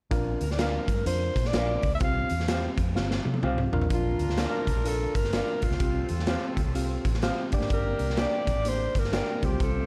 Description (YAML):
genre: uptempo 1960s-style soul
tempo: 126 BPM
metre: 4/4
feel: swing 63% on 8ths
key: unclear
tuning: A4 = 440 Hz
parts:
  - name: reed electric piano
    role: accompaniment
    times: 0.1-9.9 s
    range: G3 to F5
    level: -35 LUFS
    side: equal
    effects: overdrive
  - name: vintage muted fingered electric bass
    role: bass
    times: 0.1-9.8 s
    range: G1 to C3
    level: -32 LUFS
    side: equal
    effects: none
  - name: raw garage drum kit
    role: drums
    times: 0.1-9.7 s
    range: hi-hat, kick drum, snare drum, toms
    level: -31 LUFS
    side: equal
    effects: none
  - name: warm alto saxophone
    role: melody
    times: 0.4-9.9 s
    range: F4 to F5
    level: -33 LUFS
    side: equal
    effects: none
  - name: electric guitar through a small old amp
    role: stabs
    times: 0.6-9.3 s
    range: G4 to G5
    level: -39 LUFS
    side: equal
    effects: spring reverb
  - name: warm horn section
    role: second line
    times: 3.9-9.9 s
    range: Bb3 to C5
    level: -42 LUFS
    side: equal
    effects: none
room: light reverb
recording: dark, warm production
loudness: -27 LUFS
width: mono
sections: 0.1-3.9 A section; 3.9-9.9 B section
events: drum fill 3.0-3.9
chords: 0.1 Bb; 2.0 Csus4; 3.7 Bb; 5.8 Csus4; 7.5 Gm